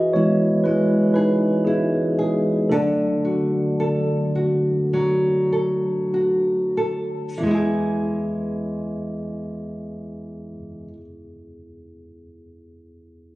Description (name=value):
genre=pop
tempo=45-61 BPM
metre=4/4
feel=straight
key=E major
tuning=A4 = 443 Hz
part: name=mellow tine electric piano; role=accompaniment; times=0.0-13.4 s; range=E2 to D#5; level=-22 LUFS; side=equal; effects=medium stereo tremolo
part: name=nylon-string guitar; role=arpeggios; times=0.0-11.0 s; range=D3 to A4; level=-22 LUFS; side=equal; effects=none
room=light reverb, studio reverb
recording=recorded on a phone in the room, studio ambience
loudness=-19 LUFS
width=side -18 dB against mid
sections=0.0-7.4 A section; 7.4-12.7 B section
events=slowing down 0.0-7.4; tine electric piano solo 0.0-7.4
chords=0.0 E; 2.7 D; 7.4 E